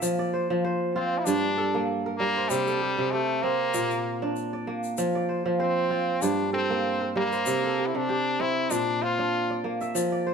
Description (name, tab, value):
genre	west african traditional, West African string and xylophone music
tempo	97 BPM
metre	4/4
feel	swing 54% on 16ths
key	F major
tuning	A4 = 440 Hz
part	kora	arpeggios	0.0-10.3 s	G2 to E5	-26 LUFS	right 2 dB	none
part	egg shaker	percussion	0.0-10.1 s	none	-36 LUFS	left 7 dB	none
part	stopped French horn	melody	0.9-9.6 s	G3 to F4	-27 LUFS	left 2 dB	none
room	moderate stone room reverb, RT60 1.4 s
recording	band playing live in one room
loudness	-24 LUFS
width	side -6 dB against mid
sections	0.0-10.3 A section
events	none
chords	0.0 F5; 1.3 Gm; 2.5 C5; 3.7 Bb; 5.0 F5; 6.2 Gm; 7.5 C5; 8.7 Bb